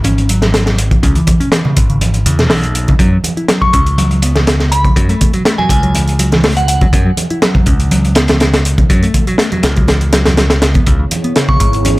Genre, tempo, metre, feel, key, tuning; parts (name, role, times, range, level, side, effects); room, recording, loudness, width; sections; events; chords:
breakbeat, breaks; 122 BPM; 4/4; straight; A4 = 440 Hz
picked electric bass; riff; 0.0-12.0 s; B2 to E4; -18 LUFS; equal
modern bright picked electric bass; bass; 0.0-12.0 s; G#1 to F#2; -14 LUFS; equal; tube saturation
crunchy breakbeat drum kit; drums; 0.0-12.0 s; hi-hat, kick drum, snare drum; -13 LUFS; equal
electronic hi-hat; drums; 0.0-12.0 s; -25 LUFS; right 2 dB; overdrive
congas; percussion; 0.0-12.0 s; -22 LUFS; right 2 dB
glassy synth bell; melody; 3.6-6.8, 11.5-11.7 s; F#5 to C#6; -18 LUFS; equal; chorus, phaser, AM radio sound, dub echo
warbly tape-like pad; sustained chords; 10.9-12.0 s; B3 to C#5; -20 LUFS; equal; chorus, built-in reverb, vintage 12-bit sampler grit, sidechain pumping
little or no reverb; -9 LUFS; side -20 dB against mid
0.0-12.0 A section
0.0 C#m7; 3.0 F#5; 10.9 C#m7